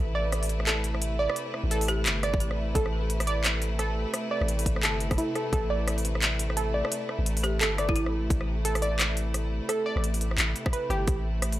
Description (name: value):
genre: half-time drum and bass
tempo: 173 BPM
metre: 4/4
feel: swing 60% on 16ths, half-time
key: A minor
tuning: A4 = 438 Hz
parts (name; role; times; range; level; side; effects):
- bright symphonic string section; sustained chords; 0.0-11.6 s; C3 to B4; -34 LUFS; equal; vintage 12-bit sampler grit, sidechain pumping
- long sustained 808-style bass; bass; 0.0-11.6 s; G1 to A1; -29 LUFS; equal; none
- warbly dusty pluck; arpeggios; 0.1-11.1 s; E4 to D5; -31 LUFS; right 2 dB; chorus, analog delay
- drum and bass drum kit; drums; 0.3-11.6 s; handclaps, hi-hat, rim click; -29 LUFS; equal; studio reverb
- folk marimba with hard mallets; melody; 1.9-2.1, 7.4-8.0 s; E4 to G4; -35 LUFS; equal; vintage 12-bit sampler grit, tape echo
- electronic kick drum; drums; 2.3-5.6, 7.9-8.4, 10.7-11.2 s; none; -28 LUFS; equal; studio reverb
room: digital ambience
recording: dry, gritty hardware recording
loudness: -25 LUFS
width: side -14 dB against mid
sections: 0.0-11.6 A section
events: break 5.2-5.5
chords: 0.0 Amadd9